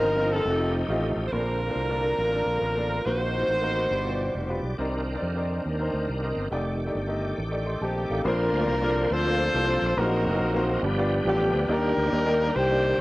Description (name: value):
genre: gospel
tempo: 139 BPM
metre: 4/4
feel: swing 64% on 8ths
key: Bb major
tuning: A4 = 440 Hz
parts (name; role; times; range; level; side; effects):
- warm horn section; melody; 0.0-4.6, 7.8-13.0 s; B3 to C5; -27 LUFS; left 1 dB; cassette tape, tape echo
- clear upright piano; accompaniment; 0.0-13.0 s; G2 to C6; -30 LUFS; left 1 dB; cassette tape
- bright tonewheel organ; sustained chords; 0.0-13.0 s; B2 to D5; -31 LUFS; right 1 dB; fast rotary speaker, overdrive, chorus vibrato, cassette tape
- fingered electric bass; bass; 0.0-13.0 s; F1 to F2; -29 LUFS; equal; none
- bright alto saxophone; melody; 1.3-4.6 s; Bb4 to C5; -28 LUFS; right 2 dB; cassette tape
room: light reverb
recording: home recording on cassette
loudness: -23 LUFS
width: side -19 dB against mid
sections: 0.0-1.3 A section; 1.3-8.3 B section; 8.3-13.0 A section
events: none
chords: 0.5 F9; 1.3 Bbmaj9; 3.1 Ebm6/Bb; 3.9 G7; 4.8 Cm9; 6.5 F13; 8.3 Bbmaj9; 10.0 Ebm6; 10.8 G7; 11.7 Ebmaj7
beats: 0.03 0.46 0.89 | 1.32 1.76 2.19 2.62 | 3.05 3.49 3.92 4.35 | 4.79 5.22 5.65 6.09 | 6.52 6.95 7.39 7.82 | 8.25 8.68 9.12 9.55 | 9.98 10.41 10.84 11.27 | 11.70 12.13 12.56 12.99